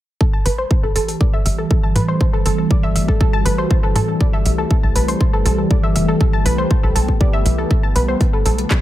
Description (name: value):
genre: progressive house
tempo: 120 BPM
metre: 4/4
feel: straight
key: A dorian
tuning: A4 = 438 Hz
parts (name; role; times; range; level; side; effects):
- evolving wavetable pad; sustained chords; 1.0-8.8 s; D3 to G4; -22 LUFS; equal; phaser, built-in reverb, sidechain pumping
- analog pluck; arpeggios; 0.2-8.8 s; A4 to A5; -23 LUFS; equal; chorus, sidechain pumping, tape echo
- electronic kick drum; drums; 0.2-8.8 s; none; -16 LUFS; equal; none
- tight sequencer bass; bass; 0.5-8.7 s; G1 to A2; -20 LUFS; equal; sidechain pumping
- deep house drum kit; drums; 0.5-8.8 s; handclaps, hi-hat; -25 LUFS; left 1 dB; overdrive, sidechain pumping on hats
room: little or no reverb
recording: none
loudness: -14 LUFS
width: side -14 dB against mid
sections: 0.2-8.8 A section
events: filter sweep on synth pluck 0.2-8.8; filter sweep on ambient pad 0.2-8.8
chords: 0.2 Am7; 4.2 C6; 8.2 Bm7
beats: | 0.21 0.71 1.21 1.71 | 2.21 2.71 3.21 3.71 | 4.21 4.71 5.21 5.71 | 6.21 6.71 7.21 7.71 | 8.21 8.71